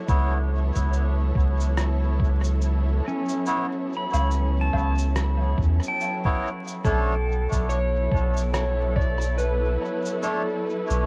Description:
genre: ambient dub.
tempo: 71 BPM.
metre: 4/4.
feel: swing 59% on 16ths.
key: unclear.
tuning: A4 = 435 Hz.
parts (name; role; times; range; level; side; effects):
warm symphonic string section; sustained chords; 0.0-11.1 s; F#3 to C#5; -35 LUFS; equal; vintage 12-bit sampler grit, cassette tape.
melodica; stabs; 0.1-10.4 s; A3 to C#5; -34 LUFS; equal; cassette tape, dub echo.
soft dub sub bass; bass; 0.1-11.1 s; B1 to E2; -25 LUFS; equal; none.
electronic kick drum; drums; 0.1-9.2 s; none; -28 LUFS; equal; cassette tape.
electronic shaker, rim click and woodblock; drums; 0.1-11.0 s; none; -38 LUFS; equal; cassette tape, dub echo.
pedal steel guitar; arpeggios; 3.1-7.0 s; C#4 to B5; -32 LUFS; equal; cassette tape, analog delay.
electric slide guitar; melody; 6.8-11.1 s; A4 to D5; -30 LUFS; equal; analog delay.
room: light reverb.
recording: home recording on cassette, vinyl crackle.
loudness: -24 LUFS.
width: mono.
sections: 0.0-11.1 A section.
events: none.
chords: 0.1 C#m7b5; 6.8 B7sus2.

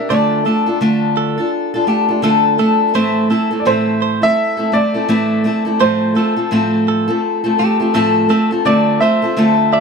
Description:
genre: acoustic pop.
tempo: 84 BPM.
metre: 4/4.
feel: swing 60% on 16ths.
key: unclear.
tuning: A4 = 440 Hz.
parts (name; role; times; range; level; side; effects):
warm upright piano; melody; 0.0-9.8 s; C5 to E5; -18 LUFS; right 2 dB; none.
fingerpicked steel-string acoustic guitar; accompaniment; 0.0-9.8 s; A2 to Bb4; -14 LUFS; left 1 dB; none.
direct-recorded clean electric guitar; arpeggios; 0.1-9.8 s; G4 to D5; -22 LUFS; right 9 dB; none.
room: light reverb.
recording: close, detailed microphones.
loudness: -12 LUFS.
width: side -5 dB against mid.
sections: 0.0-8.7 A section; 8.7-9.8 B section.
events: none.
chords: 0.1 Dm; 2.9 Am; 5.8 F/A; 8.7 Dm7.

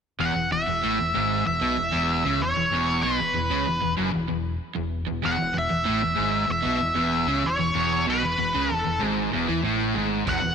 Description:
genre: classic rock.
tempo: 95 BPM.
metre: 4/4.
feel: straight.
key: E major.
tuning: A4 = 440 Hz.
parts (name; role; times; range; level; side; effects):
octave-fuzz lead guitar; melody; 0.2-10.5 s; B4 to F#5; -25 LUFS; equal; wah, distortion, slapback echo.
overdriven electric guitar; riff; 0.2-10.5 s; E2 to E3; -28 LUFS; left 11 dB; none.
overdriven electric guitar; riff; 0.2-10.5 s; E2 to E3; -28 LUFS; right 10 dB; none.
fingered electric bass; bass; 0.2-10.5 s; E1 to E2; -32 LUFS; left 1 dB; none.
raw garage drum kit; drums; 10.3-10.4 s; hi-hat, kick drum; -31 LUFS; equal; none.
room: moderate echo chamber reverb, RT60 2.3 s.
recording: 1960s-style stereo with parts hard left and right.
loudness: -22 LUFS.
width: side -7 dB against mid.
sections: 0.2-10.5 A section.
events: none.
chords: 0.2 E.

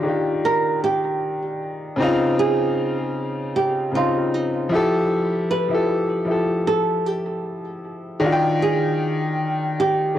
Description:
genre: hip hop.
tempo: 77 BPM.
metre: 4/4.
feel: swing 56% on 16ths.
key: Eb major.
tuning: A4 = 436 Hz.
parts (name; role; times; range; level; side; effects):
clear upright piano; accompaniment; 0.0-10.2 s; Db3 to G5; -21 LUFS; left 1 dB; none.
flamenco guitar; melody; 0.4-10.1 s; Eb4 to Cb5; -23 LUFS; right 3 dB; tape echo.
room: moderate studio reverb, RT60 0.6 s.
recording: worn, warbling old tape, cassette tape, warbly pitch drift.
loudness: -19 LUFS.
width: side -11 dB against mid.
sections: 0.0-10.2 A section.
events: none.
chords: 0.0 Ebmaj9; 2.0 Dbmaj9; 4.7 Fmaj9; 8.2 Ebmaj9.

